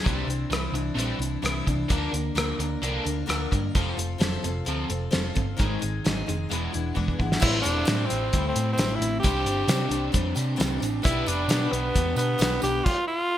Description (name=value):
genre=folk rock and heartland rock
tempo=131 BPM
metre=4/4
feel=straight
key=C mixolydian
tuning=A4 = 440 Hz
part: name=picked steel-string acoustic guitar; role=accompaniment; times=0.0-12.8 s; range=E2 to B4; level=-32 LUFS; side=left 5 dB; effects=lush chorus
part: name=overdriven electric guitar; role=riff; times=0.0-12.8 s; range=E2 to C5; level=-31 LUFS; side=right 1 dB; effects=analog chorus
part: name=hollow-body short-scale picked electric bass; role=bass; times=0.1-12.8 s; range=E1 to C3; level=-29 LUFS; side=right 1 dB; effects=none
part: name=cloth-damped thuddy drum kit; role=drums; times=0.1-13.0 s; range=crash cymbal, hi-hat, kick drum, rim click, snare drum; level=-26 LUFS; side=equal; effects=gated reverb
part: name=raspy tenor saxophone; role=melody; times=7.4-13.4 s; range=B3 to G4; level=-27 LUFS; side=equal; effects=none
part: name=tambourine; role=percussion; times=7.4-12.7 s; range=none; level=-42 LUFS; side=right 7 dB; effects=none
room=light reverb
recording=bright 1980s-style digital production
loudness=-23 LUFS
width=side -12 dB against mid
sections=0.0-7.4 A section; 7.4-13.4 B section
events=drum fill 7.0-7.4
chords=0.0 Cadd9; 1.9 Bb/D; 3.7 F; 5.6 Ab; 6.5 E7; 7.4 Am7; 9.2 Csus2; 11.0 G; 12.9 N.C.